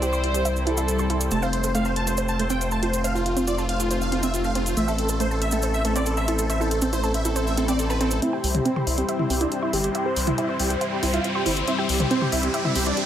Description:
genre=uplifting trance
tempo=139 BPM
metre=4/4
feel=straight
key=C major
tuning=A4 = 439 Hz
part: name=warm studio violin section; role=second line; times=0.0-1.2 s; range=A4 to C5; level=-29 LUFS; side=equal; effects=digital delay
part: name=wide unison pluck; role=arpeggios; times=0.0-12.9 s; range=A3 to C6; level=-28 LUFS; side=right 3 dB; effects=digital delay
part: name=gritty driven synth bass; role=bass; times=0.0-12.9 s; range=F1 to C2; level=-26 LUFS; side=equal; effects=none
part: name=punchy analog drum machine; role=drums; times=0.0-13.1 s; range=hi-hat, toms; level=-29 LUFS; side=left 2 dB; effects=overdrive
part: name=cabasa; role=percussion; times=0.0-8.2 s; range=none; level=-32 LUFS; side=right 2 dB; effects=none
part: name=supersaw chords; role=melody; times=1.3-13.1 s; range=C4 to A5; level=-26 LUFS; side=equal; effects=low-pass filter, tape echo
part: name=swell and riser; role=sound effects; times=7.5-13.1 s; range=none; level=-31 LUFS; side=left 1 dB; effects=none
room=light reverb, digital ambience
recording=none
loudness=-21 LUFS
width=side -10 dB against mid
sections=0.0-8.2 A section; 8.2-13.1 B section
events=swell 7.5-8.2; build-up 8.2-13.1; riser 8.2-13.1; filter sweep on supersaw synth 8.2-13.1; filter sweep 8.2-13.1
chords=0.0 C; 1.3 F; 4.8 Am; 8.2 C

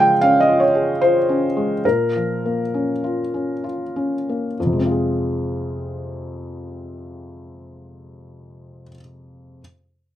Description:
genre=neoclassical minimalist piano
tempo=63-77 BPM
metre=3/4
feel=rubato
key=F minor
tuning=A4 = 440 Hz
part: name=felt-muted upright piano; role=solo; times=0.0-9.6 s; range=F2 to G5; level=-18 LUFS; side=equal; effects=none
room=light reverb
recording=rough home demo mix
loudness=-17 LUFS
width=side -12 dB against mid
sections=0.0-4.6 A section; 4.6-7.4 B section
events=slowing down 0.0-4.6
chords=0.0 Db; 1.8 Bbm; 4.6 Fm

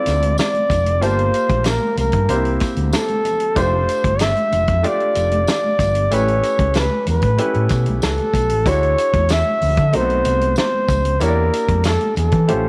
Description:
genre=lush 1970s-style soul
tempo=94 BPM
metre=4/4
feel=straight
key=D minor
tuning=A4 = 438 Hz
part: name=breathy flugelhorn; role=melody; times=0.0-12.7 s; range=A4 to E5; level=-21 LUFS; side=equal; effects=none
part: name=warm baby grand piano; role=accompaniment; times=0.0-12.7 s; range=G#3 to A5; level=-27 LUFS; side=equal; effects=none
part: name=overdriven fingered electric bass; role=bass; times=0.1-12.7 s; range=F1 to E3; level=-22 LUFS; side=equal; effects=none
part: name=warm soul drum kit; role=drums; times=0.1-12.6 s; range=hi-hat, kick drum, snare drum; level=-25 LUFS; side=equal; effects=none
part: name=tambourine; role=percussion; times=0.1-12.3 s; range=none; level=-39 LUFS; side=equal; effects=none
part: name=congas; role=percussion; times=0.2-12.7 s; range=none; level=-33 LUFS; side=equal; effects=none
room=light reverb, studio reverb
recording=tape saturation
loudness=-18 LUFS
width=mono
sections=0.0-12.7 A section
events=none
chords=0.0 Dm9; 1.0 Gm11; 2.3 C7; 3.6 F69; 6.1 A9; 8.7 Dmaj9#11; 9.9 B7b9; 11.2 Em7b5

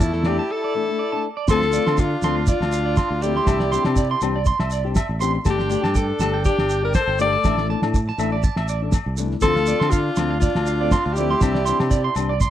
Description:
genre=highlife guitar band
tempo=121 BPM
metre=4/4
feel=swing 54% on 16ths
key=D minor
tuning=A4 = 440 Hz
part: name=bright alto saxophone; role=melody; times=0.0-12.1 s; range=E4 to D5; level=-23 LUFS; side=left 4 dB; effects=slapback echo
part: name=breathy trumpet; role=second line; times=0.0-12.2 s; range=A3 to A4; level=-32 LUFS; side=right 7 dB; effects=none
part: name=nylon-string guitar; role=accompaniment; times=0.0-12.3 s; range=E3 to G4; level=-27 LUFS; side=left 10 dB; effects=none
part: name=electric guitar at the edge of break-up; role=arpeggios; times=0.0-12.5 s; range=A4 to C6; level=-26 LUFS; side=right 6 dB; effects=spring reverb, slapback echo
part: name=fingered electric bass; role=bass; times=0.0-12.5 s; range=G1 to D3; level=-24 LUFS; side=right 1 dB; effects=none
part: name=cloth-damped thuddy drum kit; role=drums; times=0.0-12.5 s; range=crash cymbal, kick drum, snare drum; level=-22 LUFS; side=right 1 dB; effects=none
part: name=shekere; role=percussion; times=0.0-12.5 s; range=none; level=-27 LUFS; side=right 2 dB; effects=none
part: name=agogo bells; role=percussion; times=0.3-12.3 s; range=none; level=-33 LUFS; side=left 12 dB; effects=none
room=little or no reverb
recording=dry, close 1970s-style studio recording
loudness=-18 LUFS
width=side -11 dB against mid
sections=0.0-1.5 A section; 1.5-12.5 B section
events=break 0.5-1.5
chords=0.0 Asus4; 1.5 Dm7; 3.5 Cadd9; 5.5 Gsus2; 7.4 Asus4; 9.4 Dm7; 11.4 Cadd9

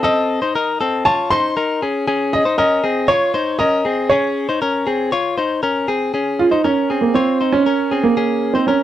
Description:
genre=indie pop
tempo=118 BPM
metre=4/4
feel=straight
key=unclear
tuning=A4 = 440 Hz
part: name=warm upright piano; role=melody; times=0.0-8.8 s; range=Bb3 to C6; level=-17 LUFS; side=right 2 dB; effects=slapback echo
part: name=direct-recorded clean electric guitar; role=arpeggios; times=0.0-8.8 s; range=C4 to Db5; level=-18 LUFS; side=left 3 dB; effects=none
room=light reverb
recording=dry, close 1970s-style studio recording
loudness=-15 LUFS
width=side -12 dB against mid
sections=0.0-6.1 A section; 6.1-8.8 B section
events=none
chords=0.0 F7; 1.8 Bbm7

